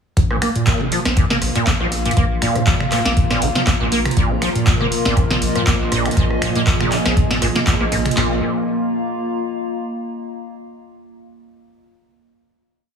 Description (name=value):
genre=acid house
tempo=120 BPM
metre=4/4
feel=swing 55% on 16ths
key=unclear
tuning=A4 = 442 Hz
part: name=round analog bass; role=bass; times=0.2-8.4 s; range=Bb1 to Bb2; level=-23 LUFS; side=equal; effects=sidechain pumping
part: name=booming analog drum machine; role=drums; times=0.2-8.3 s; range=handclaps, kick drum, snare drum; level=-18 LUFS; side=equal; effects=none
part: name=booming analog drum machine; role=drums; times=0.2-8.2 s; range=finger snaps, handclaps, hi-hat, rim click, snare drum, toms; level=-21 LUFS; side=equal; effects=none
part: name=warbly tape-like pad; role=texture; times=0.7-10.1 s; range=Bb3 to Bb5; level=-24 LUFS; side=left 1 dB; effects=chorus, built-in reverb, sidechain pumping
part: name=liquid acid bass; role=riff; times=0.3-8.4 s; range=Bb2 to Bb3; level=-21 LUFS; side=right 1 dB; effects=overdrive, wide subtle chorus, sidechain pumping, digital delay
part: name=warm analog pad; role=sustained chords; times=4.2-8.4 s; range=Bb2 to Bb4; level=-25 LUFS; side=equal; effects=chorus, sidechain pumping
room=moderate spring reverb, RT60 1.7 s, digital ambience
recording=heavily compressed radio sound, multiband compression, small room ambience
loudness=-15 LUFS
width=side -6 dB against mid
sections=0.2-8.2 drop; 8.2-10.2 final chord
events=drop 0.2-8.2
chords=0.2 Bb5